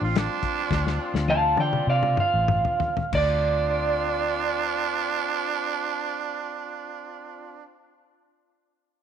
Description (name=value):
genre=straight-eighth soul blues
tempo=91-110 BPM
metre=4/4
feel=straight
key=D minor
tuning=A4 = 439 Hz
part: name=electric guitar through a small old amp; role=melody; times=0.0-7.6 s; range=D4 to A5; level=-24 LUFS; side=right 3 dB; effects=none
part: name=raspy tenor saxophone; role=second line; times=0.0-7.6 s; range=D4 to F4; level=-28 LUFS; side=right 9 dB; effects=none
part: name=warm horn section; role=sustained chords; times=0.0-7.6 s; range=C4 to F4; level=-34 LUFS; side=left 3 dB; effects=none
part: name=vintage muted fingered electric bass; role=bass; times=0.0-7.6 s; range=A1 to D3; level=-27 LUFS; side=left 1 dB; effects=none
part: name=warm soul drum kit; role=drums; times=0.2-3.3 s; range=crash cymbal, hi-hat, kick drum, snare drum, toms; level=-28 LUFS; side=left 5 dB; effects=none
room=light reverb, small room ambience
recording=1960s-style stereo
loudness=-22 LUFS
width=side -8 dB against mid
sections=0.0-3.1 A section; 3.1-8.4 B section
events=slowing down 0.0-3.1; drum fill 0.7-3.1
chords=0.0 Dm7